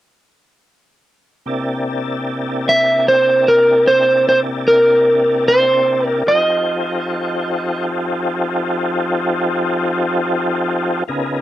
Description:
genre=blues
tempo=50 BPM (dotted quarters)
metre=12/8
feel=straight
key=unclear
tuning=A4 = 440 Hz
part: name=tonewheel organ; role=sustained chords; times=1.5-11.4 s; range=C3 to A5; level=-19 LUFS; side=left 1 dB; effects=slow rotary speaker, chorus vibrato
part: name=electric slide guitar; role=melody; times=2.7-7.8 s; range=Bb4 to E5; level=-12 LUFS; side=right 1 dB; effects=none
room=moderate booth ambience, RT60 0.2 s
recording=dark, warm production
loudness=-14 LUFS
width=side -13 dB against mid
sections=1.5-11.4 A section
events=none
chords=1.5 C13; 6.3 F9

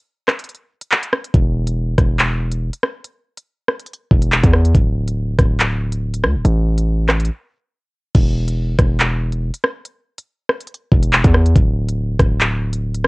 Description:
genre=hip hop, drill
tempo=141 BPM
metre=4/4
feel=half-time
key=unclear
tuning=A4 = 437 Hz
part: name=drill drum kit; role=drums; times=0.3-13.1 s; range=crash cymbal, handclaps, hi-hat, kick drum, rim click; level=-15 LUFS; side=equal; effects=vintage 12-bit sampler grit
part: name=hard-hitting 808-style bass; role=bass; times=1.3-13.1 s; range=D1 to E2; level=-16 LUFS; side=equal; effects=none
room=little or no reverb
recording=home recording on cassette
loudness=-15 LUFS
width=side -28 dB against mid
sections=0.0-8.2 A section; 8.2-13.1 B section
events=break 0.0-1.3, 7.3-8.2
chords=none

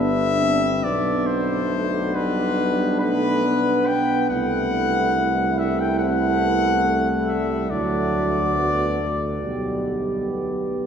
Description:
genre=classical, hymn-like piece for brass band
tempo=70 BPM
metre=4/4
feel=rubato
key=unclear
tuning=A4 = 440 Hz
part: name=warm cornet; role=melody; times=0.0-9.8 s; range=B4 to G5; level=-23 LUFS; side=left 3 dB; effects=none
part: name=mellow French horn section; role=second line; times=0.0-10.9 s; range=D4 to G4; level=-26 LUFS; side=right 4 dB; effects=none
part: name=mellow euphonium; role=accompaniment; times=0.0-10.9 s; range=F#3 to C4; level=-29 LUFS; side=right 1 dB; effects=none
part: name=mellow trombone section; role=accompaniment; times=0.0-10.9 s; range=A3 to B3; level=-28 LUFS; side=left 1 dB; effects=none
part: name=mellow tuba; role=bass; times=0.0-10.9 s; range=G1 to D2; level=-26 LUFS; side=equal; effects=none
room=wet cathedral reverb, RT60 6.6 s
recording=heard from further back in the room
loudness=-19 LUFS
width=side -7 dB against mid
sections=0.0-10.9 A section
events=none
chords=0.0 G; 0.8 Am11/B; 4.3 Am/C; 7.7 D; 9.4 G/B

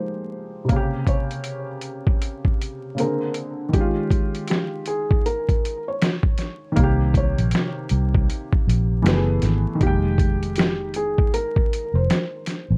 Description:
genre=lo-fi hip hop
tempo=79 BPM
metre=4/4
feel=swing 61% on 16ths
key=Bb dorian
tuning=A4 = 440 Hz
part: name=felt-muted upright piano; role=melody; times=0.0-12.8 s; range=G4 to Db5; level=-30 LUFS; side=equal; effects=low-pass filter, analog delay
part: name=warm upright piano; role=accompaniment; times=0.0-12.8 s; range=C3 to G5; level=-29 LUFS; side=equal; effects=low-pass filter
part: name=dusty soul sampler-style drum kit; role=drums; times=0.7-12.7 s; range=hi-hat, kick drum, snare drum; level=-23 LUFS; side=equal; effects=overdrive
part: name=vintage muted fingered electric bass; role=bass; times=6.8-12.8 s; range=F1 to C2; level=-23 LUFS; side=equal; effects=none
room=light reverb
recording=dark, warm production, vinyl crackle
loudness=-22 LUFS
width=mono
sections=0.0-6.8 A section; 6.8-12.8 B section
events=none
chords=0.0 Fm11; 0.7 Bbm69; 3.0 Bb9; 3.7 Eb9sus4; 6.8 Cm7; 9.0 Gbm11; 9.8 Fm11

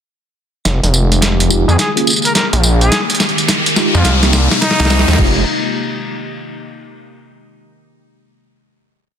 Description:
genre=glitch hop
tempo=106 BPM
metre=4/4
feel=swing 64% on 16ths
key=F minor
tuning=A4 = 441 Hz
part: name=warbly tape-like pad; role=sustained chords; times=0.7-5.4 s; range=C3 to Ab4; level=-22 LUFS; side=left 2 dB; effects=chorus, built-in reverb, vintage 12-bit sampler grit, sidechain pumping
part: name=gritty driven synth bass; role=bass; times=0.7-5.4 s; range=F1 to F2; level=-13 LUFS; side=equal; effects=tube saturation
part: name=boom bap sampler-style drum kit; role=drums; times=0.7-5.4 s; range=crash cymbal, hi-hat, snare drum, tambourine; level=-16 LUFS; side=equal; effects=none
part: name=electronic kick drum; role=drums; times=0.7-5.3 s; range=none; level=-19 LUFS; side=equal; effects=none
part: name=riser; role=sound effects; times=2.2-5.2 s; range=none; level=-20 LUFS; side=left 2 dB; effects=none
part: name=mellow tine electric piano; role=stabs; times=1.5-5.4 s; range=Ab3 to Ab4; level=-21 LUFS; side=right 1 dB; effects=medium stereo tremolo, sidechain pumping, low-pass filter, tape echo
part: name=breathy trumpet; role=melody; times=1.7-5.2 s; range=Eb4 to Bb4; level=-21 LUFS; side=equal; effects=tape echo
room=light reverb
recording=dense, heavily limited modern master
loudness=-11 LUFS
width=side -8 dB against mid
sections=0.7-5.2 build; 5.2-7.4 final chord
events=build-up 0.7-5.2; drum fill 0.7-5.2; riser 2.2-5.2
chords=0.7 Fm9; 1.8 Bbm7; 2.9 Fm9; 4.1 Cm7; 5.2 Fm9

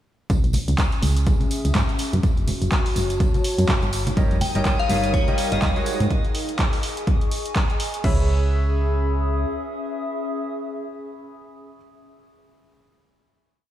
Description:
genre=piano house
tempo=124 BPM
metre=4/4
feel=swing 58% on 16ths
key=C# minor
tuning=A4 = 440 Hz
part: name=solid FM bass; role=bass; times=0.3-9.5 s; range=E1 to G#2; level=-21 LUFS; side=right 1 dB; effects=sidechain pumping
part: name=electronic kick drum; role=drums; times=0.3-8.2 s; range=none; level=-21 LUFS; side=equal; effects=none
part: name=punchy analog drum machine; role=drums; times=0.3-8.2 s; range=crash cymbal, handclaps, hi-hat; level=-29 LUFS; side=right 1 dB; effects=none
part: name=tambourine and congas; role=percussion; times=0.3-6.1 s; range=none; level=-31 LUFS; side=right 3 dB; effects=none
part: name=warbly tape-like pad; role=texture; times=0.8-12.0 s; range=C#4 to D#6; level=-29 LUFS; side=left 2 dB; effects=chorus, built-in reverb, sidechain pumping
part: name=string machine, violins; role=sustained chords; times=4.2-6.1 s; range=D#6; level=-36 LUFS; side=equal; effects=ensemble chorus, vintage 12-bit sampler grit, sidechain pumping
part: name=bright baby grand piano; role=riff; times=4.2-11.8 s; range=G3 to E#5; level=-29 LUFS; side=equal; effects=sidechain pumping, diffuse ambient delay
part: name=glassy synth bell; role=melody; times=4.4-5.7 s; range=C#5 to G5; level=-28 LUFS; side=left 2 dB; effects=chorus, diffuse ambient delay
room=moderate lush hall reverb, RT60 2.4 s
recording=dreamy mix soaked in reverb, studio ambience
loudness=-19 LUFS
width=side -12 dB against mid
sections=0.3-8.0 groove; 8.0-11.9 final chord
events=none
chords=0.3 C#m; 2.0 F#m7; 3.9 D#7; 5.9 G#sus4; 8.0 C#m7

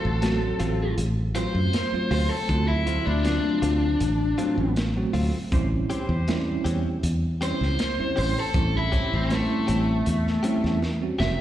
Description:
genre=straight-eighth soul blues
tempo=79 BPM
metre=4/4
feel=straight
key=unclear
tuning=A4 = 440 Hz
part: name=raw garage guitar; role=melody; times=0.0-11.4 s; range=A3 to E5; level=-26 LUFS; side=left 2 dB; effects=overdrive, slapback echo
part: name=clear horn section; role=sustained chords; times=0.0-9.7 s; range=C#4 to C#5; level=-40 LUFS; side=left 1 dB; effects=none
part: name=direct-recorded clean electric guitar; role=stabs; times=0.0-11.4 s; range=E3 to G4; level=-34 LUFS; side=left 4 dB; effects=vibrato effect, slapback echo
part: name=fingered electric bass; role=bass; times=0.0-11.4 s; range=F1 to F#2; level=-25 LUFS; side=equal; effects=none
part: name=bell-like tine electric piano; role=accompaniment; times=0.2-11.4 s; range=F#3 to F#4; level=-29 LUFS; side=right 4 dB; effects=medium stereo tremolo, slapback echo
part: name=crunchy breakbeat drum kit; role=drums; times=0.2-11.4 s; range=hi-hat, kick drum, snare drum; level=-30 LUFS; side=equal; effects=slapback echo
room=small room reverb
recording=live gig heard through the venue's PA, recital hall reverb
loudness=-22 LUFS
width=side -12 dB against mid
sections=0.0-11.4 A section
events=overdriven electric guitar solo 0.0-11.4; drum fill 10.8-11.4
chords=0.0 D7#9; 5.5 A7#9

